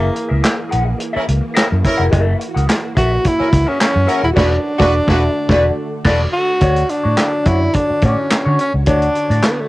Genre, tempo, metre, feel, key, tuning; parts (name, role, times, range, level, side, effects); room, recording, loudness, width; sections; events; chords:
funk; 107 BPM; 4/4; straight; A4 = 440 Hz
breathy tenor saxophone; melody; 0.0-9.7 s; A3 to F#4; -18 LUFS; equal; cassette tape, tape echo
vintage hollow-body jazz guitar; accompaniment; 0.0-9.6 s; D4 to F#5; -21 LUFS; left 2 dB; wah, cassette tape
soft string machine; sustained chords; 0.0-9.7 s; D3 to C#5; -27 LUFS; equal; ensemble chorus, cassette tape
vintage muted fingered electric bass; bass; 0.0-9.4 s; D#1 to D3; -16 LUFS; equal
warm soul drum kit; drums; 0.2-9.6 s; crash cymbal, handclaps, hi-hat, kick drum, snare drum; -17 LUFS; equal; cassette tape
clear horn section; second line; 1.2-6.2 s; C#4 to B4; -19 LUFS; equal; cassette tape
light reverb; home recording on cassette; -13 LUFS; side -18 dB against mid
0.0-6.6 A section; 6.6-9.7 B section
band accent 4.4-6.6
0.0 F#9; 4.4 E9sus4; 6.6 Dmaj7